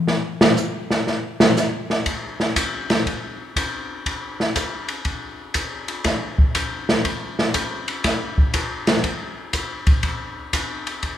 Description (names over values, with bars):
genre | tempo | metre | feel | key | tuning
jazz | 120 BPM | 4/4 | swing 67% on 8ths | none | none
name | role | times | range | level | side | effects
open jazz drum kit | drums | 0.1-11.2 s | hi-hat, kick drum, ride cymbal, snare drum | -20 LUFS | equal | none
room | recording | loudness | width
moderate recital hall reverb, RT60 1.7 s | recorded in a church or concert hall | -20 LUFS | side -11 dB against mid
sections
0.0-2.1 A section; 2.1-11.2 B section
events
drum solo 0.0-2.1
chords
none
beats
| 0.07 0.57 1.07 1.56 | 2.06 2.56 3.06 3.56 | 4.05 4.55 5.05 5.55 | 6.05 6.54 7.04 7.54 | 8.04 8.54 9.04 9.53 | 10.03 10.53 11.03